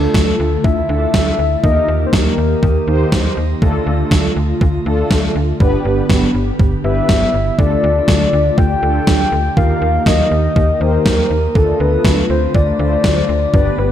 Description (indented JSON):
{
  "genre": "synth-pop",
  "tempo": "121 BPM",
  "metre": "4/4",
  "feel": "straight",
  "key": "unclear",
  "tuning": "A4 = 439 Hz",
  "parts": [
    { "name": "soft octave-layered synth lead", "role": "melody", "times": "0.0-3.4, 6.8-13.9 s", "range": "A4 to G5", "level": "-18 LUFS", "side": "left 2 dB", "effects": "chorus, shimmer reverb, digital delay" },
    { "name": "mellow synth brass", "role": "accompaniment", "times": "0.0-13.9 s", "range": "A3 to C5", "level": "-21 LUFS", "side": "right 1 dB", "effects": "chorus, phaser, shimmer reverb" },
    { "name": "warm analog pad", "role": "sustained chords", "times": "0.0-13.9 s", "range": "D3 to G4", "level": "-22 LUFS", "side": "equal", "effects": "chorus, shimmer reverb" },
    { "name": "slap-like FM bass", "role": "bass", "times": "0.0-13.9 s", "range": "G1 to Eb2", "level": "-18 LUFS", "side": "equal", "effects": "none" },
    { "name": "gated 80s digital drum machine", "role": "drums", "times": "0.1-13.7 s", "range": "kick drum, snare drum", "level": "-16 LUFS", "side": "equal", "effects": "gated reverb, gated reverb snare, overdrive" }
  ],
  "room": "moderate concert hall reverb, RT60 1.8 s",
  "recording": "none",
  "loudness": "-12 LUFS",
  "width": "side -10 dB against mid",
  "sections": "0.0-13.9 A section",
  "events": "none",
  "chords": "0.0 Dm; 1.6 Eb; 3.6 Dm; 5.6 G; 7.6 Dm; 9.6 Eb; 11.6 Dm"
}